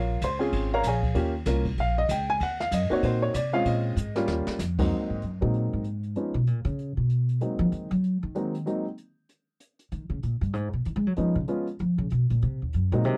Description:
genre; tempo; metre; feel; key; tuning
jazz piano trio; 192 BPM; 4/4; swing 61% on 8ths; Ab mixolydian; A4 = 440 Hz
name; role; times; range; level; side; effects
warm upright piano; melody; 0.0-8.8, 11.2-13.2 s; Ab2 to C6; -30 LUFS; equal; none
upright bass; bass; 0.0-13.2 s; Ab1 to Ab3; -29 LUFS; equal; none
jazz brush drum kit; drums; 0.2-13.1 s; crash cymbal, hi-hat, kick drum, ride cymbal, snare drum; -37 LUFS; equal; none
room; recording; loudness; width
little or no reverb; dry, close 1970s-style studio recording; -27 LUFS; mono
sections
0.0-4.9 A section; 4.9-13.2 A section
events
upright piano solo 0.0-4.9; drum fill 4.0-4.6; upright bass solo 4.9-13.2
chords
0.0 Bbm7; 1.2 Eb9; 2.4 Ab9 (rootless); 3.7 Bbm7; 4.3 Eb9; 4.9 Ab9; 6.2 Db7(no3); 7.4 Ab9; 9.9 Db9; 12.4 Ab9

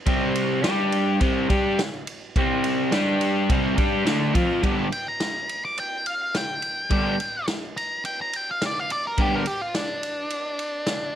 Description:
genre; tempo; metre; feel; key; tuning
garage rock duo or trio; 106 BPM; 4/4; straight; unclear; A4 = 440 Hz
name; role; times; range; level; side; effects
crunchy overdriven guitar; riff; 0.1-9.4 s; G2 to G4; -21 LUFS; equal; none
vintage drum kit; drums; 0.1-11.0 s; kick drum, ride cymbal, snare drum; -27 LUFS; equal; none
octave-fuzz lead guitar; melody; 4.9-11.2 s; D4 to D6; -26 LUFS; equal; distortion
room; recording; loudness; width
light reverb, studio reverb; none; -22 LUFS; side -10 dB against mid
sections
0.0-4.6 A section; 4.6-11.2 B section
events
lead electric guitar solo 4.6-11.2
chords
0.1 C5; 0.6 G5; 1.2 C5; 2.9 G5; 3.5 C5; 4.6 G

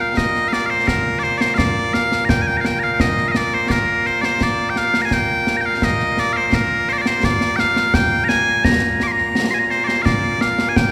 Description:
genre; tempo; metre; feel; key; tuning
scottish traditional, Scottish pipe music; 85 BPM; 2/4; straight; Bb mixolydian; A4 = 440 Hz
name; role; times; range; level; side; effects
loud bright bagpipes; melody; 0.0-10.9 s; Bb2 to D6; -19 LUFS; equal; none
concert snare drum and concert bass drum; drums; 0.2-10.9 s; none; -23 LUFS; equal; none
room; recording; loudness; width
wet church reverb, RT60 3.6 s; recorded in a church or concert hall; -18 LUFS; mono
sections
0.0-10.1 A section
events
none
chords
none

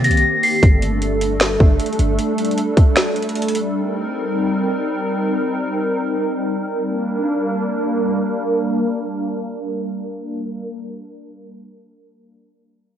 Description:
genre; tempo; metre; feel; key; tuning
hip hop, trap; 154 BPM; 4/4; half-time; G minor; A4 = 439 Hz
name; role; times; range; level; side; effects
soft synth bell; melody; 0.0-0.6 s; Bb6 to C7; -18 LUFS; left 2 dB; chorus, low-pass filter, analog delay
hollow soft pad; sustained chords; 0.0-10.7 s; Eb3 to Bb4; -20 LUFS; equal; ensemble chorus, low-pass filter, cassette tape
clean 808-style bass; bass; 0.0-2.2 s; G1 to C3; -20 LUFS; equal; none
trap drum kit; drums; 0.0-3.6 s; finger snaps, hi-hat, kick drum, snare drum; -16 LUFS; equal; cassette tape
room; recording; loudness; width
light reverb, digital ambience; home recording on cassette; -17 LUFS; side -9 dB against mid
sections
0.6-6.9 A section; 6.9-10.0 B section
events
filter sweep on analog synth pad 0.6-6.9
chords
0.0 Cm7; 0.6 Gsus2; 3.7 Cm7; 6.9 Gm

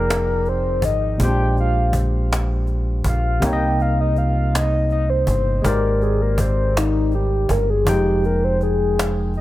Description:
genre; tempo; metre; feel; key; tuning
slow six-eight R&B; 54 BPM (dotted quarters); 6/8; straight; unclear; A4 = 440 Hz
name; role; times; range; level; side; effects
soft octave-layered synth lead; melody; 0.0-9.4 s; Eb4 to G5; -22 LUFS; left 1 dB; chorus, phaser, digital delay
barky tine electric piano; accompaniment; 0.0-9.4 s; Bb2 to G5; -24 LUFS; left 1 dB; none
deep dub fingered electric bass; bass; 0.0-9.4 s; F1 to C2; -20 LUFS; equal; none
cajon; drums; 0.1-9.4 s; none; -25 LUFS; equal; none
room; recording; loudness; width
digital ambience; none; -17 LUFS; side -15 dB against mid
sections
0.0-9.4 A section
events
soft synth lead solo 0.0-9.4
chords
0.0 Fm9; 1.2 Bb13; 3.4 Cm7; 5.6 Abmaj9#11; 7.9 Fm9

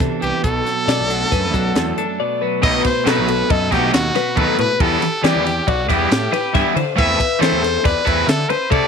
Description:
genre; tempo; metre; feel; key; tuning
math rock and midwest emo; 138 BPM; 5/4; straight; unclear; A4 = 440 Hz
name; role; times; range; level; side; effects
twelve-string electric guitar; accompaniment; 0.0-4.8 s; E2 to A4; -25 LUFS; right 13 dB; none
twelve-string electric guitar; arpeggios; 0.0-8.9 s; F#4 to F#5; -22 LUFS; left 14 dB; none
fuzz fingered electric bass; bass; 0.0-8.8 s; B1 to E3; -23 LUFS; right 1 dB; overdrive
crisp fusion drum kit; drums; 0.0-8.8 s; crash cymbal, hi-hat, kick drum, ride cymbal, snare drum; -21 LUFS; equal; none
brilliant trumpet; melody; 0.2-8.9 s; F#4 to E5; -21 LUFS; right 1 dB; none
cranked stack guitar; riff; 2.6-8.9 s; B2 to A4; -20 LUFS; right 1 dB; overdrive
room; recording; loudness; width
light reverb; 1960s-style stereo with parts hard left and right; -15 LUFS; side -6 dB against mid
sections
0.0-2.6 A section; 2.6-8.9 B section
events
none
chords
0.4 Bm7; 2.6 B7; 4.8 Em7; 7.0 Amadd9/E

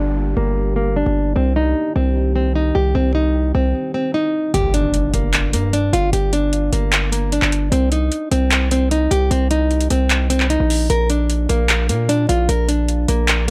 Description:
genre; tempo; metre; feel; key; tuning
hip hop, trap; 151 BPM; 4/4; half-time; G minor; A4 = 440 Hz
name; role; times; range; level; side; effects
nylon-string guitar; melody; 0.0-13.5 s; Bb3 to Bb4; -22 LUFS; equal; low-pass filter, analog delay
deep dark ambient pad; sustained chords; 0.0-4.5 s; D3 to G4; -32 LUFS; equal; chorus, built-in reverb, low-pass filter
distorted 808-style bass; bass; 0.0-13.5 s; G1 to Bb2; -21 LUFS; equal; distortion
downlifter and impact; sound effects; 0.0-1.4, 4.5-6.1 s; none; -30 LUFS; equal; none
trap drum kit; drums; 4.5-13.5 s; handclaps, hi-hat; -23 LUFS; equal; overdrive
room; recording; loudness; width
little or no reverb; dry, gritty hardware recording; -18 LUFS; mono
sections
0.0-4.5 A section; 4.5-13.5 B section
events
filter sweep 0.0-4.5; break 3.7-4.5; impact 4.5-6.1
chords
0.0 Gm; 1.4 Cm; 4.5 Gm; 7.7 Cm; 10.9 Bb

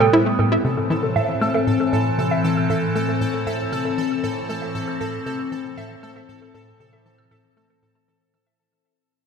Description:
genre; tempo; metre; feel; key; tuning
ambient, sequencer-driven space music; 117 BPM; 4/4; straight; A minor; A4 = 443 Hz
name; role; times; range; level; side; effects
evolving wavetable pad; sustained chords; 0.0-8.6 s; A2 to C4; -23 LUFS; left 2 dB; phaser, built-in reverb
warbly dusty pluck; arpeggios; 0.0-8.6 s; A4 to E6; -25 LUFS; right 3 dB; chorus, phaser, auto-pan, tape echo
tight sequencer bass; riff; 0.1-8.4 s; A2 to E4; -24 LUFS; equal; tape echo
pulsing gated texture; texture; 0.7-8.6 s; A4 to A5; -30 LUFS; equal; chorus, built-in reverb
room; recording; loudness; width
wet echo chamber reverb, RT60 2.5 s; echo-heavy mix; -19 LUFS; side -6 dB against mid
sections
0.4-8.6 A section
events
fade-out on analog synth bass 0.4-8.6; fade-out on synth arpeggio sound 0.4-8.6; fade-out 0.4-8.6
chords
0.4 Am

